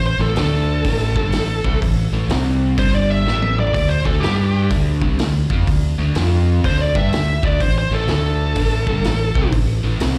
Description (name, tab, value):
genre	blues rock power trio and southern rock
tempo	124 BPM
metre	4/4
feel	swing 64% on 8ths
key	unclear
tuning	A4 = 441 Hz
part	bluesy overdriven lead guitar	melody	0.0-9.5 s	G4 to E5	-25 LUFS	equal	distortion, slapback echo, digital delay
part	overdriven electric guitar	riff	0.0-10.2 s	G2 to G4	-26 LUFS	equal	none
part	growling fingered electric bass	bass	0.0-10.2 s	G1 to G2	-21 LUFS	equal	overdrive
part	vintage drum kit	drums	0.4-10.2 s	hi-hat, kick drum, snare drum, toms	-25 LUFS	equal	none
room	little or no reverb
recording	live gig heard through the venue's PA, club reverb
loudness	-18 LUFS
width	mono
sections	0.0-10.2 A section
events	drum fill 3.3-3.7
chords	0.4 D5; 0.9 A5; 2.3 C5; 2.8 G5; 3.3 A5; 3.7 D5; 4.2 G5; 4.7 D5; 6.2 F5; 6.6 D5; 7.6 A5; 8.1 D5; 8.6 A5